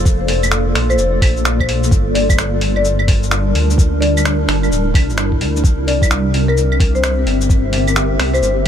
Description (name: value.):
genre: future garage.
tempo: 129 BPM.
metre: 4/4.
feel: swing 63% on 16ths.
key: G dorian.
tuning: A4 = 439 Hz.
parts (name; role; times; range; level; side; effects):
granular cloud pad; sustained chords; 0.0-8.7 s; G3 to E5; -20 LUFS; equal; built-in reverb, vintage 12-bit sampler grit, sidechain pumping.
dark detuned saw bass; bass; 0.0-8.7 s; D1 to D2; -17 LUFS; equal; sidechain pumping.
electronic kick drum; drums; 0.1-8.7 s; none; -13 LUFS; equal; overdrive.
lo-fi sampler-style drum kit; drums; 0.1-8.7 s; claves, finger snaps, hi-hat, shaker; -21 LUFS; equal; overdrive.
marimba with medium mallets; melody; 0.9-8.5 s; Bb4 to D5; -22 LUFS; left 4 dB; ping-pong delay.
room: light reverb.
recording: none.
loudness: -13 LUFS.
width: side -9 dB against mid.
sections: 0.0-8.7 A section.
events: none.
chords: 0.0 Bbmaj7; 1.9 Gm7; 5.6 C7.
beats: | 0.06 0.52 0.98 1.45 | 1.92 2.38 2.85 3.31 | 3.78 4.24 4.71 5.17 | 5.64 6.10 6.57 7.03 | 7.50 7.96 8.43.